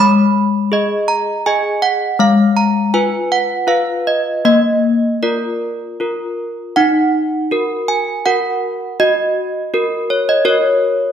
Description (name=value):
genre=classical, tune for handbells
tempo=81 BPM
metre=3/4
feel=straight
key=Eb minor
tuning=A4 = 440 Hz
part: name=desk bells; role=solo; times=0.0-11.1 s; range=Ab3 to Cb6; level=-13 LUFS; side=equal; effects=none
room=wet recital hall reverb, RT60 1.4 s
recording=dark, warm production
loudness=-13 LUFS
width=side -8 dB against mid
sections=0.0-6.8 A section; 6.8-11.1 B section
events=none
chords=0.0 Abm; 2.2 Fdim/Ab; 4.5 Bb; 6.8 Ebm; 9.0 Gb